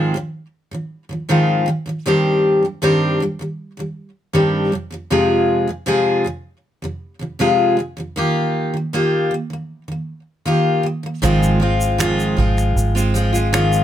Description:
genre	acoustic pop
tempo	78 BPM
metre	4/4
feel	straight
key	unclear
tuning	A4 = 441 Hz
part	picked steel-string acoustic guitar	accompaniment	0.0-13.8 s	F2 to Ab4	-16 LUFS	equal	none
part	vintage muted fingered electric bass	bass	11.2-13.8 s	Ab1	-19 LUFS	right 1 dB	none
part	unplugged drum kit	drums	11.2-13.8 s	finger snaps, kick drum, shaker	-24 LUFS	right 2 dB	none
room	light reverb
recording	close, detailed microphones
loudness	-16 LUFS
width	side -11 dB against mid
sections	0.0-11.2 A section; 11.2-13.8 B section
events	none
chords	0.0 Ab6; 2.1 Cmadd9/G; 4.7 Fm; 8.2 Ebadd9; 11.2 Ab6

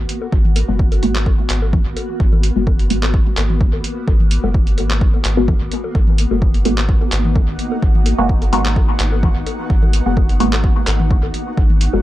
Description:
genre	dub techno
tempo	128 BPM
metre	4/4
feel	swing 54% on 16ths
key	G# minor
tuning	A4 = 440 Hz
part	granular cloud pad	sustained chords	0.0-12.0 s	A#3 to F#4	-26 LUFS	left 1 dB	built-in reverb, sidechain pumping
part	warm sub bass	bass	0.0-12.0 s	F#1 to G#1	-18 LUFS	equal	sidechain pumping
part	lo-fi sampler-style drum kit	drums	0.1-11.9 s	handclaps, hi-hat	-25 LUFS	right 1 dB	dub echo
part	electronic bongos and toms	percussion	0.2-12.0 s	none	-27 LUFS	left 4 dB	sidechain pumping on perc, sidechain pumping on toms, dub echo
part	electronic kick drum	drums	0.3-11.7 s	none	-16 LUFS	equal	none
part	filtered dub chord stab	stabs	0.7-12.0 s	G#3 to F#4	-21 LUFS	left 1 dB	phaser, dub echo
part	bubbling stepped-filter texture	texture	6.4-12.0 s	F#4 to F#5	-31 LUFS	right 1 dB	chorus, built-in reverb, sidechain pumping
room	little or no reverb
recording	dark, warm production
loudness	-13 LUFS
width	side -15 dB against mid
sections	0.0-12.0 A section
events	filter sweep on synth stab 0.0-12.0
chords	0.0 G#m9

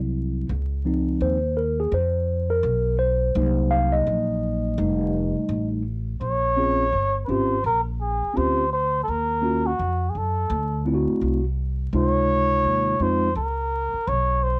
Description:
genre	hip hop, jazz-hop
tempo	84 BPM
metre	4/4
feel	swing 62% on 16ths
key	unclear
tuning	A4 = 437 Hz
part	mellow tine electric piano	accompaniment	0.0-13.3 s	C3 to F5	-26 LUFS	equal	cassette tape
part	upright bass	bass	0.0-14.6 s	F1 to Gb2	-28 LUFS	equal	none
part	trumpet with cup mute	melody	6.2-14.6 s	Gb4 to Db5	-25 LUFS	equal	cassette tape
room	light reverb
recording	home recording on cassette, vinyl crackle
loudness	-23 LUFS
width	mono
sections	0.0-6.2 A section; 6.2-14.6 B section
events	tine electric piano solo 0.0-6.2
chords	0.5 Dbmaj7; 3.4 Cm7b5; 4.8 F7; 6.2 Bbm7; 9.1 Ebm7; 10.5 D9; 11.9 Dbmaj7

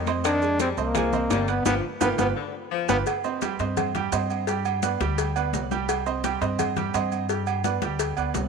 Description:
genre	latin, salsa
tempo	170 BPM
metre	4/4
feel	straight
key	C harmonic minor from 3.1 s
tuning	A4 = 438 Hz
part	warm saxophone section	second line	0.0-2.9 s	D3 to G3	-32 LUFS	left 11 dB	none
part	upright bass	bass	0.0-8.5 s	G1 to G2	-30 LUFS	left 1 dB	none
part	bright baby grand piano	accompaniment	0.1-8.5 s	G3 to Ab5	-29 LUFS	right 10 dB	none
part	bongos and cowbell	percussion	0.1-8.5 s	none	-32 LUFS	left 16 dB	none
part	congas	percussion	0.1-8.5 s	none	-35 LUFS	left 12 dB	none
part	maracas	percussion	0.1-8.5 s	none	-38 LUFS	right 11 dB	none
part	timbales and agogo bells	percussion	0.1-8.5 s	none	-30 LUFS	right 12 dB	none
part	bright trombone	melody	0.3-3.0 s	Bb3 to D4	-27 LUFS	left 1 dB	none
room	light reverb, small room ambience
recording	1960s-style stereo with parts hard left and right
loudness	-23 LUFS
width	side -5 dB against mid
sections	0.0-3.1 A section; 3.1-8.5 B section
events	drum fill 1.7-3.1; band accent 1.7-3.1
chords	0.2 Fm11; 1.7 G7; 3.1 Cm; 4.5 G; 5.9 Cm; 7.3 G

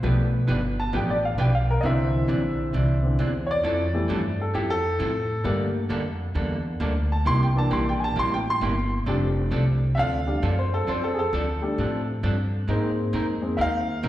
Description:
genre	country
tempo	133 BPM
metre	4/4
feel	swing 66% on 8ths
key	F major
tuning	A4 = 441 Hz
part	vintage hollow-body jazz guitar	accompaniment	0.0-14.1 s	B2 to B4	-30 LUFS	right 2 dB	slapback echo
part	warm upright piano	accompaniment	0.0-14.1 s	D3 to C6	-26 LUFS	left 1 dB	slapback echo
part	upright bass	bass	0.0-14.1 s	F1 to A2	-25 LUFS	equal	none
room	moderate lush hall reverb, RT60 2.3 s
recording	live gig heard through the venue's PA, recital hall reverb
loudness	-22 LUFS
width	side -14 dB against mid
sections	0.0-14.1 A section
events	upright piano solo 0.0-14.1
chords	0.0 G7; 1.8 Cadd9; 3.6 Fmaj7; 5.5 Gmadd9; 7.3 C7; 9.1 F6; 12.7 Abadd9

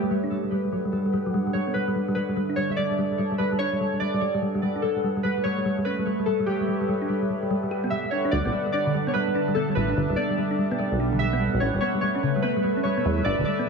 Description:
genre	IDM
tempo	146 BPM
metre	4/4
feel	swing 62% on 16ths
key	G lydian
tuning	A4 = 440 Hz
part	warbly lo-fi synth keys	melody	0.0-13.7 s	G4 to E5	-28 LUFS	right 1 dB	chorus, tape echo
part	warbly tape-like pad	sustained chords	0.0-13.7 s	D3 to A5	-28 LUFS	right 1 dB	chorus, built-in reverb
part	thumb-piano-like synth pluck	arpeggios	0.0-13.7 s	C#3 to G4	-27 LUFS	left 1 dB	chorus, cassette tape, analog delay
part	deep acid bass	bass	8.3-13.4 s	D1 to E2	-25 LUFS	right 2 dB	none
room	wet spring reverb, RT60 1.5 s, digital ambience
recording	echo-heavy mix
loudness	-22 LUFS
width	side -5 dB against mid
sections	0.0-8.3 A section; 8.3-13.7 B section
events	filter sweep on ambient pad 0.0-8.3; filter sweep on synth arpeggio sound 0.0-8.3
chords	0.1 Gmaj7; 1.8 Dsus2; 5.0 Aadd9; 6.7 Gmaj7; 8.3 Dsus2; 10.0 Gmaj7; 11.6 Aadd9

